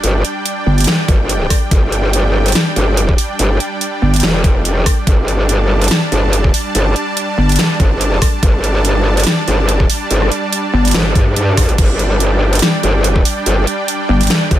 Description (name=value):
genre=heavy wobble dubstep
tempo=143 BPM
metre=4/4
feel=swing 55% on 16ths, half-time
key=unclear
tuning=A4 = 441 Hz
part: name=supersaw pad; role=sustained chords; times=0.0-14.6 s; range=G3 to A5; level=-20 LUFS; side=right 1 dB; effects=sidechain pumping
part: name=growl bass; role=bass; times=0.0-14.6 s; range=F1 to G2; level=-14 LUFS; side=equal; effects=chorus, overdrive
part: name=dubstep drum kit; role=drums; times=0.0-14.6 s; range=crash cymbal, hi-hat, rim click, snare drum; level=-17 LUFS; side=equal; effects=overdrive
part: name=pulsing pluck wobble bass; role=bass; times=0.7-0.9, 4.0-4.2, 7.4-7.6, 10.7-10.9, 14.1-14.3 s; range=G1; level=-11 LUFS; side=equal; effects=chorus, overdrive
part: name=electronic kick drum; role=drums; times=1.1-14.6 s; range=none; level=-13 LUFS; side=equal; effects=overdrive
room=little or no reverb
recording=none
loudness=-11 LUFS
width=side -12 dB against mid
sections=0.0-14.6 A section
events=none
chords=0.0 G5